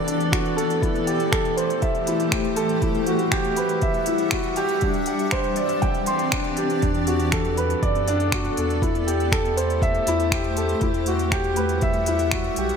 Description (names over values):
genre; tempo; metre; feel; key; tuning
piano and strings electronica; 120 BPM; 4/4; straight; E minor; A4 = 440 Hz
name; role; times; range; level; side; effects
granular cloud pad; sustained chords; 0.0-12.8 s; E3 to F#5; -26 LUFS; equal; built-in reverb, sidechain pumping
warm upright piano; riff; 0.0-12.8 s; D4 to C6; -23 LUFS; equal; ping-pong delay
deep house drum kit; drums; 0.1-12.8 s; finger snaps, hi-hat; -29 LUFS; equal; none
electronic kick drum; drums; 0.3-12.4 s; none; -26 LUFS; equal; none
warm sub bass; bass; 6.8-12.7 s; B1 to F#2; -27 LUFS; equal; sidechain pumping
room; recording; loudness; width
moderate concert hall reverb, RT60 2.0 s; none; -20 LUFS; side -6 dB against mid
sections
0.0-6.8 A section; 6.8-12.8 B section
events
build-up 0.0-6.8; drop 6.8-12.8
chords
0.0 Bm7/E; 0.8 Am7/E; 2.8 Emadd9; 4.8 Csus2/E; 6.8 Bm7/E; 8.8 Am7/E; 10.8 Emadd9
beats
0.33 | 0.83 1.33 1.83 2.33 | 2.83 3.33 3.83 4.33 | 4.83 5.33 5.83 6.33 | 6.83 7.33 7.83 8.33 | 8.83 9.33 9.83 10.33 | 10.83 11.33 11.83 12.33